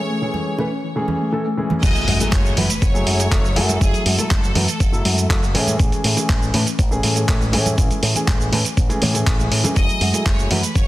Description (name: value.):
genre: nu-disco, nu disco.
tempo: 121 BPM.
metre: 4/4.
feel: straight.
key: F# dorian.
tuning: A4 = 440 Hz.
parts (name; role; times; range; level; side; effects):
bright studio violin section; melody; 0.0-5.5, 9.8-10.9 s; G#4 to D#5; -27 LUFS; left 1 dB; tape echo.
dark grand piano; accompaniment; 0.0-10.6 s; E3 to B4; -24 LUFS; equal; sidechain pumping, tape echo.
soft round pluck; arpeggios; 0.1-10.8 s; E3 to G#4; -28 LUFS; left 2 dB; chorus, sidechain pumping, tape echo.
congas and bongos; percussion; 0.3-10.6 s; none; -28 LUFS; right 2 dB; none.
picked electric bass with an envelope filter; bass; 1.8-10.9 s; F#1 to A2; -21 LUFS; equal; none.
dusty soul sampler-style drum kit; drums; 1.8-10.9 s; cabasa, crash cymbal, handclaps, hi-hat; -22 LUFS; right 1 dB; none.
electronic kick drum; drums; 1.8-10.9 s; none; -18 LUFS; equal; none.
impact; sound effects; 1.8-3.8 s; none; -27 LUFS; equal; none.
room: light reverb.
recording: dense, heavily limited modern master.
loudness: -16 LUFS.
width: side -16 dB against mid.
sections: 0.0-1.8 A section; 1.8-10.9 B section.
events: filter sweep on grand piano 0.0-1.8; drop 1.8-10.9; impact 1.8-3.8.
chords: 0.0 Amaj7; 1.8 F#m9; 5.5 Amaj7; 9.8 F#m9.